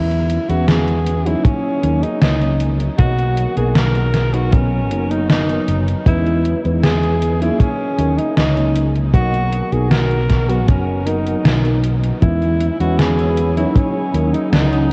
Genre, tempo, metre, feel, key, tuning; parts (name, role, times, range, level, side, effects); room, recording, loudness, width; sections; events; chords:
vaporwave; 78 BPM; 4/4; straight; B major; A4 = 441 Hz
breathy alto saxophone; melody; 0.0-14.9 s; C#4 to A#4; -23 LUFS; equal; tape echo
mellow FM electric piano; accompaniment; 0.0-14.9 s; F#3 to C#5; -25 LUFS; equal; lush chorus, diffuse ambient delay
mellow fretless electric bass; bass; 0.0-14.9 s; F#1 to E2; -20 LUFS; equal; tube saturation
gated 80s digital drum machine; drums; 0.1-14.9 s; hi-hat, snare drum; -23 LUFS; equal; gated reverb, gated reverb snare, vintage 12-bit sampler grit
kick drum; drums; 1.4-13.9 s; -16 LUFS; equal; vintage 12-bit sampler grit
warbly tape-like pad; sustained chords; 12.2-14.9 s; C#5 to E6; -32 LUFS; equal; chorus, built-in reverb
wet huge ambient reverb, RT60 7.4 s; dreamy mix soaked in reverb, cassette tape; -16 LUFS; mono
0.0-14.9 A section
0.0 E6; 1.4 D#m7; 3.0 Bmaj7; 6.1 E6; 7.6 D#m7; 9.1 Bmaj7; 12.2 E6; 13.8 D#m7